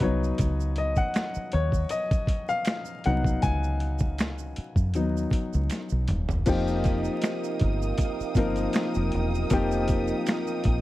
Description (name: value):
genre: R&B, neo-soul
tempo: 79 BPM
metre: 4/4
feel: swing 53% on 16ths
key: unclear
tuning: A4 = 441 Hz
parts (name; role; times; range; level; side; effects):
- clear baby grand piano; accompaniment; 0.0-10.8 s; F3 to Cb6; -28 LUFS; left 3 dB; none
- deep dub fingered electric bass; bass; 0.0-10.8 s; Eb1 to Gb2; -27 LUFS; equal; none
- boom bap sampler-style drum kit; drums; 0.0-10.8 s; crash cymbal, finger snaps, hi-hat, kick drum, snare drum, toms; -27 LUFS; equal; none
- tube shaker and finger snaps; percussion; 0.2-10.6 s; none; -44 LUFS; right 16 dB; none
- dark studio string section; sustained chords; 6.5-10.8 s; Bb4 to Eb6; -38 LUFS; right 2 dB; none
- muted trombone section; stabs; 6.5-10.8 s; C3 to Eb4; -34 LUFS; right 12 dB; none
room: little or no reverb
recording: dry, close 1970s-style studio recording, vinyl crackle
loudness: -24 LUFS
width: side -16 dB against mid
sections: 0.0-6.5 A section; 6.5-10.8 B section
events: grand piano solo 0.0-6.5; drum fill 5.7-6.5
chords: 0.0 Db9sus4; 6.5 F9sus4